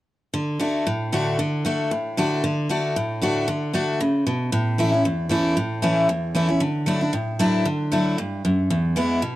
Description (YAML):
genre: bluegrass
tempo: 230 BPM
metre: 4/4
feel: swing 53% on 8ths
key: D major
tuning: A4 = 443 Hz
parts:
  - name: picked steel-string acoustic guitar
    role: solo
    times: 0.3-9.4 s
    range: E2 to F#4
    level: -20 LUFS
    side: equal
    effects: none
room: light reverb, studio ambience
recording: dry, close 1970s-style studio recording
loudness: -20 LUFS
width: side -15 dB against mid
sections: 0.3-8.7 A section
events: none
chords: 0.3 D; 4.5 A; 6.6 Dadd9; 8.7 E